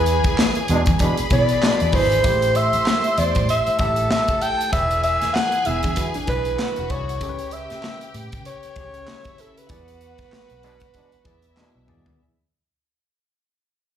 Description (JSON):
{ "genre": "lush 1970s-style soul", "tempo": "96 BPM", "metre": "4/4", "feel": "swing 58% on 16ths", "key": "unclear", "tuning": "A4 = 440 Hz", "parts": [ { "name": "breathy alto saxophone", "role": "melody", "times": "0.0-11.9 s", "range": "A4 to G5", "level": "-22 LUFS", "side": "equal", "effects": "slapback echo" }, { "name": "warm studio violin section", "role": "second line", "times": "0.0-12.2 s", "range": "E4 to C6", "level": "-29 LUFS", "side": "equal", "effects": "slapback echo" }, { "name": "tine electric piano", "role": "accompaniment", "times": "0.0-12.2 s", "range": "C#3 to D5", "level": "-29 LUFS", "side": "left 2 dB", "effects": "medium stereo tremolo, slapback echo" }, { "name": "vintage muted fingered electric bass", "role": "bass", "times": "0.0-12.2 s", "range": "E1 to E3", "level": "-24 LUFS", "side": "equal", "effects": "none" }, { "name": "modern studio drum kit", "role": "drums", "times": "0.1-12.2 s", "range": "hi-hat, kick drum, snare drum, toms", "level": "-24 LUFS", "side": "equal", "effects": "none" }, { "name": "group handclap", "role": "percussion", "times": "0.4-11.7 s", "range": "none", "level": "-32 LUFS", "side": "right 3 dB", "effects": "slapback echo" }, { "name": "clear trombone section", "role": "stabs", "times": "0.7-2.1, 10.6-12.0 s", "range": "B2 to D4", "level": "-24 LUFS", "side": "right 2 dB", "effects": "slapback echo" }, { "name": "mellow electric guitar", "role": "riff", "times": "5.7-7.0 s", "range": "B3 to B4", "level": "-33 LUFS", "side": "right 4 dB", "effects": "slapback echo" } ], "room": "light reverb", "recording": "live gig heard through the venue's PA, club reverb", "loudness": "-17 LUFS", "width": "side -10 dB against mid", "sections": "0.0-12.2 A section", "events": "fade-out 0.0-12.2; band accent 0.0-2.2, 9.7-12.2; drum fill 11.6-12.2", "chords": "0.0 E7; 2.2 Am7; 4.7 E7; 7.2 A7/C# (rootless); 9.7 E7" }